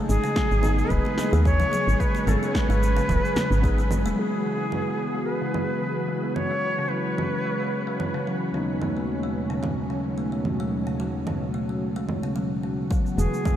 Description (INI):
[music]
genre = organic downtempo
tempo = 110 BPM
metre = 4/4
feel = swing 54% on 16ths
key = unclear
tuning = A4 = 440 Hz
[part]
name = warm analog pad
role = sustained chords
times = 0.0-13.6 s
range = D#2 to G#4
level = -31 LUFS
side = equal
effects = chorus, sidechain pumping, shimmer reverb
[part]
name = kalimba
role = arpeggios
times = 0.0-13.6 s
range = C#3 to A3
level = -29 LUFS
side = equal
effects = low-pass filter, analog delay, shimmer reverb
[part]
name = Native American-style cedar flute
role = melody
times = 0.1-8.3, 13.2-13.6 s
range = G#4 to C#5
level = -28 LUFS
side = equal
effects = analog delay, shimmer reverb
[part]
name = woody FM bass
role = bass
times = 0.1-4.1, 13.2-13.3 s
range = D#1 to D#2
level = -22 LUFS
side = equal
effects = none
[part]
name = electronic cabasa, snare drum and congas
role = drums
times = 0.1-13.6 s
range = none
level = -33 LUFS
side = right 2 dB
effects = overdrive
[part]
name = electronic kick drum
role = drums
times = 0.4-3.8, 12.9-13.6 s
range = none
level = -25 LUFS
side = equal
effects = overdrive
[part]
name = overdriven tine electric piano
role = accompaniment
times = 0.6-12.9 s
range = D#2 to G#4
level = -34 LUFS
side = left 2 dB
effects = none
[part]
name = congas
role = percussion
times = 1.1-4.2 s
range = none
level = -38 LUFS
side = left 3 dB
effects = none
[sound]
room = moderate huge ambient reverb, RT60 7.8 s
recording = dreamy mix soaked in reverb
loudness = -22 LUFS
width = side -11 dB against mid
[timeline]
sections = 0.0-4.2 A section; 4.2-12.9 B section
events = filter sweep on kalimba 4.2-12.9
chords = 0.0 G#m; 4.2 Eadd9; 8.5 B/D#; 12.9 Eadd9